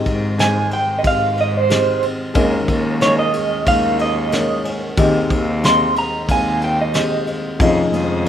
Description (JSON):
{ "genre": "acoustic folk-pop ballad", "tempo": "92 BPM", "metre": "4/4", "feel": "straight", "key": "Ab major", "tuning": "A4 = 439 Hz", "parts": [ { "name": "felt-muted upright piano", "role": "accompaniment", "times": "0.0-8.3 s", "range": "F1 to F5", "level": "-21 LUFS", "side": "left 3 dB", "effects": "none" }, { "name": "muted studio string section", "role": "sustained chords", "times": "0.0-8.3 s", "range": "Ab3 to Eb6", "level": "-36 LUFS", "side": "left 1 dB", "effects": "none" }, { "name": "felt-muted upright piano", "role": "arpeggios", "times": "0.0-8.3 s", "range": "Eb3 to Ab4", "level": "-29 LUFS", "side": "right 5 dB", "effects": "none" }, { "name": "rich cello", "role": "bass", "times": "0.1-8.3 s", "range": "Eb2 to Ab2", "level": "-22 LUFS", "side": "equal", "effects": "none" }, { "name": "soft brush drum kit", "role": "drums", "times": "0.1-8.3 s", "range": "kick drum, ride cymbal, snare drum", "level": "-22 LUFS", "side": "equal", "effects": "none" }, { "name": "electric guitar through a small old amp", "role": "melody", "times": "0.4-7.3 s", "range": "C5 to C6", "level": "-18 LUFS", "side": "right 3 dB", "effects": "tremolo" } ], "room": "small room ambience", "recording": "rough home demo mix", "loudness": "-15 LUFS", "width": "side -10 dB against mid", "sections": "0.0-8.3 A section", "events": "none", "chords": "0.0 Abmaj7; 2.4 Eb7sus4; 5.0 Abmaj7/Eb; 7.6 Dbadd9/F" }